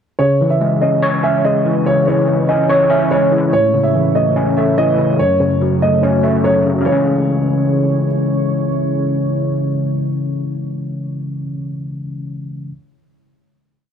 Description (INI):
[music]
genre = hip hop, drill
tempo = 144 BPM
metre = 4/4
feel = half-time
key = C# minor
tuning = A4 = 440 Hz
[part]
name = dark concert grand piano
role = melody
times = 0.2-8.1 s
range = C#5 to E5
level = -17 LUFS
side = right 2 dB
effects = none
[part]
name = overdriven tine electric piano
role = accompaniment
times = 0.2-12.7 s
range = F#2 to C#5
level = -16 LUFS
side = left 1 dB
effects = ensemble chorus
[part]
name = deep dark ambient pad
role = sustained chords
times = 2.3-11.0 s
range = C#3 to C#5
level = -22 LUFS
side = right 2 dB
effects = chorus, built-in reverb
[sound]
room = light reverb, small room ambience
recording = none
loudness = -13 LUFS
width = side -8 dB against mid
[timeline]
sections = 0.2-6.9 breakdown; 6.9-10.2 final chord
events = none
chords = 0.2 C#m; 3.5 A; 5.2 F#m; 6.9 C#m